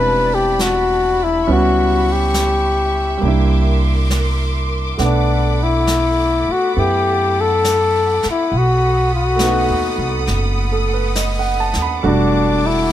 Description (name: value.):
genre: jazz ballad.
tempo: 68 BPM.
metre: 4/4.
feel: swing 68% on 8ths.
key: unclear.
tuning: A4 = 440 Hz.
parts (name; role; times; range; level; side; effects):
trumpet with bucket mute; melody; 0.0-12.9 s; D4 to B4; -16 LUFS; left 3 dB; none.
warm baby grand piano; accompaniment; 0.0-12.9 s; G3 to B5; -22 LUFS; right 5 dB; none.
warm studio string section; sustained chords; 0.0-12.9 s; G3 to D#6; -25 LUFS; right 1 dB; none.
upright bass; bass; 0.0-12.9 s; E1 to F#2; -19 LUFS; equal; none.
jazz brush drum kit; drums; 0.6-12.9 s; brushed snare drum, hi-hat, snare drum; -27 LUFS; equal; none.
room: little or no reverb.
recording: close, detailed microphones.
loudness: -14 LUFS.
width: side -12 dB against mid.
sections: 0.0-12.9 A section.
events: none.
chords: 0.0 Am11; 1.5 C#m7b5; 3.2 C9; 5.0 Bm7; 8.5 B7; 12.0 Em11.